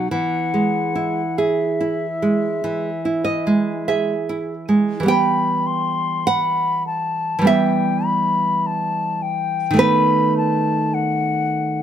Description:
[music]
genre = romantic duo for flute and classical guitar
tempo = 47-52 BPM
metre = 4/4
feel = rubato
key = E major, E minor from 5.1 s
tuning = A4 = 440 Hz
[part]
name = concert flute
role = melody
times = 0.0-11.8 s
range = E5 to C6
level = -21 LUFS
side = left 4 dB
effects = none
[part]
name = nylon-string guitar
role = accompaniment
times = 0.0-11.8 s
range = D#3 to G5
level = -19 LUFS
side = right 3 dB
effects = none
[sound]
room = light reverb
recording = none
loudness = -17 LUFS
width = side -9 dB against mid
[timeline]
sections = 0.0-5.1 A section; 5.1-11.8 B section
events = none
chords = 0.1 E; 5.1 Em; 9.8 B7/D#

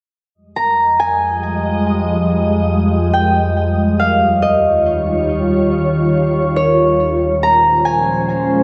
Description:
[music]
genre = hip hop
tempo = 140 BPM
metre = 4/4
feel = half-time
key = F minor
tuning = A4 = 439 Hz
[part]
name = glassy FM pad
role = sustained chords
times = 0.9-8.6 s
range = Eb2 to Eb5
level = -18 LUFS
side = equal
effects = ensemble chorus, built-in reverb
[part]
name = concert harp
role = melody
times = 0.6-8.6 s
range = Db5 to Bb5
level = -18 LUFS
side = equal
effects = low-pass filter, delay
[sound]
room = wet plate reverb, RT60 3.0 s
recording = dreamy mix soaked in reverb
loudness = -15 LUFS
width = mono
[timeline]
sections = 0.4-8.6 A section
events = none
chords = 0.4 Fm7; 3.8 Eb7; 7.2 Bbm7

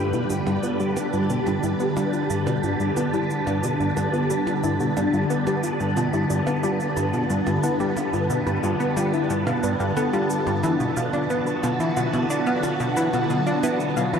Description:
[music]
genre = ambient, sequencer-driven space music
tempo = 90 BPM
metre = 4/4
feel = straight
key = unclear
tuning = A4 = 440 Hz
[part]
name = phased string machine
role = sustained chords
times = 0.0-14.2 s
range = D3 to B4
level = -24 LUFS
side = equal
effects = ensemble chorus, phaser
[part]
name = soft round pluck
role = arpeggios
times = 0.0-14.2 s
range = E4 to F5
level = -30 LUFS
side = left 3 dB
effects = chorus, auto-pan, tape echo
[part]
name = plucky analog bass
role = riff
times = 0.0-14.2 s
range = G2 to D4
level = -25 LUFS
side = equal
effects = analog chorus, tape echo
[part]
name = wind-like tuned noise texture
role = texture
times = 0.5-14.2 s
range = A5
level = -31 LUFS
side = right 1 dB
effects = built-in reverb
[part]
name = shaker and percussion blips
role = percussion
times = 0.1-14.2 s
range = none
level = -37 LUFS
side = right 3 dB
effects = tape echo
[sound]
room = wet cathedral reverb, RT60 7.2 s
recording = in a vast, echoing space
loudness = -21 LUFS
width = side -7 dB against mid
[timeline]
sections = 0.0-14.2 A section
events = none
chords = 0.0 G; 10.6 Bm

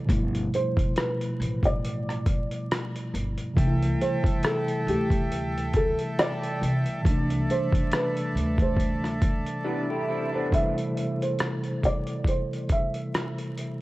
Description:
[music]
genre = lo-fi hip hop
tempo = 69 BPM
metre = 4/4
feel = swing 56% on 16ths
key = C major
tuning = A4 = 441 Hz
[part]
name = mellow tine electric piano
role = accompaniment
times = 0.0-13.8 s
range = B2 to C5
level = -29 LUFS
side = equal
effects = medium stereo tremolo, cassette tape
[part]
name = upright bass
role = bass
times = 0.1-9.4 s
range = G1 to D2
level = -29 LUFS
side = equal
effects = transformer saturation
[part]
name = dusty soul sampler-style drum kit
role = drums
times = 0.1-13.8 s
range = hi-hat, kick drum, rim click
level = -27 LUFS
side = equal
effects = none
[part]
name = felt-muted upright piano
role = melody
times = 0.5-13.3 s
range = G4 to E5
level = -30 LUFS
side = right 1 dB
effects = tape echo
[part]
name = accordion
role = sustained chords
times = 3.6-10.5 s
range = A4 to A5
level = -34 LUFS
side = right 1 dB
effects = none
[part]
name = electric guitar through a small old amp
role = second line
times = 9.6-10.7 s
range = B3 to G4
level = -32 LUFS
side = equal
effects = analog chorus, tape echo
[sound]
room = studio ambience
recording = worn, warbling old tape, cassette tape, vinyl crackle, warbly pitch drift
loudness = -24 LUFS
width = side -18 dB against mid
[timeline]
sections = 0.0-10.5 A section; 10.5-13.8 B section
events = silent gap 9.7-10.5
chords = 0.1 G13; 3.6 C69; 10.5 C6

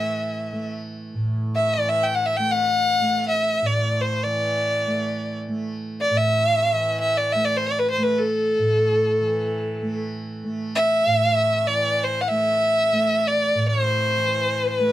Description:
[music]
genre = indian classical, Hindustani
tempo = free time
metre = none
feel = none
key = A raga bhimpalasi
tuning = A4 = 437 Hz
[part]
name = rich violin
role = melody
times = 0.0-14.9 s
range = A4 to G5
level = -20 LUFS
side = equal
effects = none
[part]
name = tanpura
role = drone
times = 0.0-14.9 s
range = A2 to A3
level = -26 LUFS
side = right 1 dB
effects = none
[sound]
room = light reverb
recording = none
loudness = -19 LUFS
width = side -14 dB against mid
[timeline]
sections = 0.0-14.9 A section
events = none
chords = none

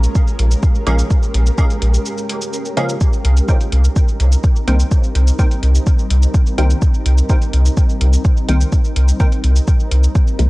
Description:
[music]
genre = dub techno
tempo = 126 BPM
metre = 4/4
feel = straight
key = C phrygian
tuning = A4 = 439 Hz
[part]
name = granular cloud pad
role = sustained chords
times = 0.0-10.5 s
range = G3 to Bb4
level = -26 LUFS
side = equal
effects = built-in reverb, vintage 12-bit sampler grit, sidechain pumping
[part]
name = warm sub bass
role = bass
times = 0.0-10.5 s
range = Bb1 to C2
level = -12 LUFS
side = equal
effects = sidechain pumping
[part]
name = electronic cabasa and hi-hat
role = drums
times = 0.0-10.5 s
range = none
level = -28 LUFS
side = equal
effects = none
[part]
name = flickering grainy texture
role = texture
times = 0.0-3.0 s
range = Bb4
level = -32 LUFS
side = right 1 dB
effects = built-in reverb, sidechain pumping
[part]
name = electronic kick drum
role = drums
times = 0.2-10.2 s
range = none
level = -13 LUFS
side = equal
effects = none
[part]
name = wavetable chord stab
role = riff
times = 0.9-9.3 s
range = Db4 to G5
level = -30 LUFS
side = right 1 dB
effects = sidechain pumping, dub echo
[part]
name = filtered dub chord stab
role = stabs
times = 0.9-10.5 s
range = Db3 to C4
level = -24 LUFS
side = left 1 dB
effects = chorus, phaser, sidechain pumping, dub echo
[sound]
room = little or no reverb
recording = dry, gritty hardware recording, cassette tape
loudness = -12 LUFS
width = side -21 dB against mid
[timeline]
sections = 0.0-3.0 A section; 3.0-10.5 A section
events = filter sweep on synth stab 0.0-3.0, 3.0-10.5; break 2.1-3.0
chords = 0.0 Bbm7; 3.0 Cm7

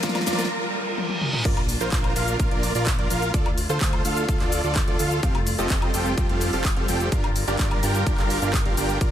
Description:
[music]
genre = EDM, festival progressive house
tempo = 127 BPM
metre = 4/4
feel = straight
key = G minor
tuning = A4 = 441 Hz
[part]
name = picked steel-string acoustic guitar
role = accompaniment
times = 0.0-0.5 s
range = F3 to F4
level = -33 LUFS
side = left 3 dB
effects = sidechain pumping, tape echo
[part]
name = warm symphonic string section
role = sustained chords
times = 0.0-9.1 s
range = D3 to Bb4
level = -31 LUFS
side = equal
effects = sidechain pumping
[part]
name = dense compressed supersaw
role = riff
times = 0.0-9.1 s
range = C4 to G5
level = -26 LUFS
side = right 2 dB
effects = sidechain pumping, tape echo
[part]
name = fat analog bass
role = bass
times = 0.0-9.1 s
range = F1 to D2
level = -28 LUFS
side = equal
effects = tube saturation, sidechain pumping, high-pass filter
[part]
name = big-room dance drum kit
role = drums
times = 0.0-9.1 s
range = crash cymbal, handclaps, hi-hat, shaker, snare drum, toms, woodblock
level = -29 LUFS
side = left 1 dB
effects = none
[part]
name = electronic kick drum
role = drums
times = 0.0-9.1 s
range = none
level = -24 LUFS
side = equal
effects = high-pass filter on kick
[part]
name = riser, reverse cymbal and sub drop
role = sound effects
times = 0.6-3.3 s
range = none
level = -32 LUFS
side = right 1 dB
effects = none
[sound]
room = light reverb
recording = none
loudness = -20 LUFS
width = side -10 dB against mid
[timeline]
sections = 0.0-1.5 A section; 1.5-9.1 B section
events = build-up 0.0-1.5; drum fill 0.0-0.5, 1.0-1.5; break 0.5-1.5; riser 0.6-1.5; reverse cymbal 0.6-1.5; drop 1.5-9.1; impact 1.5-3.3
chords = 0.0 Gm7; 1.5 Bb; 3.3 Dm; 5.2 Fadd9; 7.1 Gm7

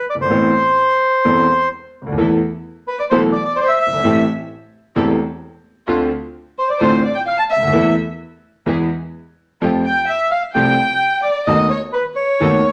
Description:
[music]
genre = tango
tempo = 129 BPM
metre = 4/4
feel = rubato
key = A minor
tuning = A4 = 440 Hz
[part]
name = bandoneon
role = melody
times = 0.0-12.7 s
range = B4 to A5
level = -19 LUFS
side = equal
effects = none
[part]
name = clear grand piano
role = accompaniment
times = 0.1-12.6 s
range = E1 to A4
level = -19 LUFS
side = equal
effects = none
[part]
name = muted studio string section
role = stabs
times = 2.2-12.6 s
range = D#3 to C5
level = -30 LUFS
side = equal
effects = none
[part]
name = warm violin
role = second line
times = 2.9-12.7 s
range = B4 to A5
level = -24 LUFS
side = equal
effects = none
[sound]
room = wet studio reverb, RT60 0.8 s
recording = none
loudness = -17 LUFS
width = mono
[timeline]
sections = 0.0-12.7 A section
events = none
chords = 0.3 Amadd9; 2.2 Esus4; 4.0 Am7; 5.9 Dm7; 7.7 Esus4; 8.7 E; 9.6 Fadd9; 11.5 B7/D#

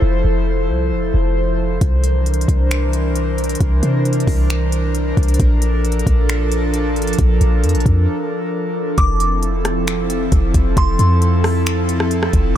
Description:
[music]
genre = hip hop, atmospheric cloud-rap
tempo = 134 BPM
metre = 4/4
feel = half-time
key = F major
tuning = A4 = 440 Hz
[part]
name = airy breathy pad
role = sustained chords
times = 0.0-12.6 s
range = E3 to C5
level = -20 LUFS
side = equal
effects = chorus, sidechain pumping
[part]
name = clean 808-style bass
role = bass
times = 0.0-12.6 s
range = F1 to C3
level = -17 LUFS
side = equal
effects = none
[part]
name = smooth R&B drum kit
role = drums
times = 1.8-12.4 s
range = finger snaps, hi-hat, kick drum, rim click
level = -19 LUFS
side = equal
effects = none
[part]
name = delicate synth tine bell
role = melody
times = 9.0-11.2 s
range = C6 to D6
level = -24 LUFS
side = equal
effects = chorus, low-pass filter, digital delay
[sound]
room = little or no reverb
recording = none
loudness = -14 LUFS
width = side -11 dB against mid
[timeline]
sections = 0.0-9.0 A section; 9.0-12.6 B section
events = break 8.1-9.0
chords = 0.0 Fmaj7; 1.8 C9; 5.4 Bbmaj7; 9.0 Fmaj7

